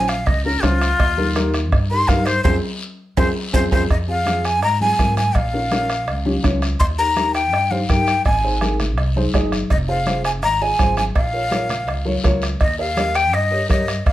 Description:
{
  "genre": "latin, cumbia",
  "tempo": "165 BPM",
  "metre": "4/4",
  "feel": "straight",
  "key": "F minor",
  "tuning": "A4 = 440 Hz",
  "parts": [
    { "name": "breathy jazz flute", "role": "melody", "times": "0.0-14.1 s", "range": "F4 to C6", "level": "-20 LUFS", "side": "left 1 dB", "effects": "none" },
    { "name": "dark upright piano", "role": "accompaniment", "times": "0.0-13.9 s", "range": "C4 to Eb5", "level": "-24 LUFS", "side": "equal", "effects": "none" },
    { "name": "upright bass", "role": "bass", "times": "0.0-14.1 s", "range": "F1 to Ab2", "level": "-23 LUFS", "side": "equal", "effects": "none" },
    { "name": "bombo", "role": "percussion", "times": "0.1-14.1 s", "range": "none", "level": "-21 LUFS", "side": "right 1 dB", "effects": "none" },
    { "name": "guiro", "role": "percussion", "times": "0.1-14.1 s", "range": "none", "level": "-32 LUFS", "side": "left 4 dB", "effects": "none" },
    { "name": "cowbell and timbales", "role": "percussion", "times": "0.3-14.1 s", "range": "none", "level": "-30 LUFS", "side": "right 4 dB", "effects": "none" },
    { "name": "congas", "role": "percussion", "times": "0.6-14.1 s", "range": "none", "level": "-27 LUFS", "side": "left 2 dB", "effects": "none" }
  ],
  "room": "light reverb",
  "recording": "none",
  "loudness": "-16 LUFS",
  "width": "side -14 dB against mid",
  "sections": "0.0-3.9 A section; 3.9-14.1 B section",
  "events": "flute solo 0.0-3.9; band accent 2.4-3.9",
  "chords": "0.0 Bbm; 1.0 Eb; 2.4 Fm; 5.4 Bbm; 6.8 Eb; 8.3 Ab; 9.7 Fm; 11.2 Bbm; 12.6 Eb"
}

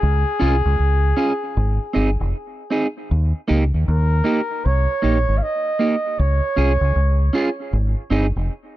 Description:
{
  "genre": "roots reggae",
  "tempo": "78 BPM",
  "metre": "4/4",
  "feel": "swing 63% on 16ths",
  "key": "Eb mixolydian",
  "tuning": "A4 = 438 Hz",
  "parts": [
    { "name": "mellow flugelhorn", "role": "melody", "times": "0.0-7.7 s", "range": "Ab4 to F5", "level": "-23 LUFS", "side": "right 1 dB", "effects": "dub echo" },
    { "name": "deep dub fingered electric bass", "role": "bass", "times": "0.0-8.5 s", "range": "F1 to Eb2", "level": "-17 LUFS", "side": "equal", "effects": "none" },
    { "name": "electric guitar at the edge of break-up", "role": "accompaniment", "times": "0.4-8.3 s", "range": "Bb3 to Ab4", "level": "-23 LUFS", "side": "right 2 dB", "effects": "dub echo" }
  ],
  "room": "little or no reverb",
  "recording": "dry, close 1970s-style studio recording",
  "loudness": "-17 LUFS",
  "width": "side -15 dB against mid",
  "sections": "0.0-8.8 A section",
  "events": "none",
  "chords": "0.0 Db; 1.6 Ab; 3.1 Eb; 6.2 Db; 7.7 Ab"
}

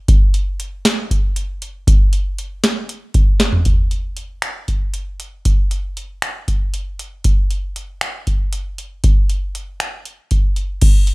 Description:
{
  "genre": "progressive instrumental, progressive",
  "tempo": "235 BPM (eighths)",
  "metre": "7/8",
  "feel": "straight",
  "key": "none",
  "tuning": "none",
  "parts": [
    { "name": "booming analog drum machine", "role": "drums", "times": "0.1-11.1 s", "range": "crash cymbal, finger snaps, hi-hat, kick drum, snare drum, toms", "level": "-15 LUFS", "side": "equal", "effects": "none" }
  ],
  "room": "little or no reverb",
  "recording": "none",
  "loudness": "-16 LUFS",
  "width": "side -24 dB against mid",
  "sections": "0.0-3.7 A section; 3.7-10.8 B section",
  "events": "drum fill 3.2-3.7",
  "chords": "none"
}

